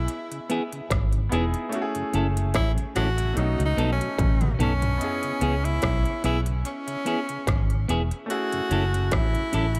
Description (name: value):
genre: lovers rock reggae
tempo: 73 BPM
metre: 4/4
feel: swing 55% on 16ths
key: C# minor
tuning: A4 = 442 Hz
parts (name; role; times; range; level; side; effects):
- bright tenor saxophone; melody; 0.0-9.8 s; C#4 to F#4; -32 LUFS; equal; tape echo
- bright grand piano; accompaniment; 0.0-9.8 s; A3 to D#5; -35 LUFS; equal; none
- vintage muted fingered electric bass; bass; 0.0-9.8 s; E1 to C#2; -27 LUFS; equal; none
- industrial drum kit; drums; 0.1-9.8 s; hi-hat, kick drum, rim click, toms; -30 LUFS; equal; distortion
- tonewheel organ; accompaniment; 0.3-9.8 s; F#2 to E4; -41 LUFS; equal; none
- clean electric guitar; stabs; 0.5-9.8 s; B3 to A4; -34 LUFS; equal; spring reverb
room: light reverb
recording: none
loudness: -25 LUFS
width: mono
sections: 0.0-5.0 A section; 5.0-9.8 B section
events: tenor saxophone solo 0.0-5.0; drum fill 3.4-5.0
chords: 0.0 C#m7; 1.7 F#m7; 3.4 B7; 5.0 C#m7; 8.3 F#m7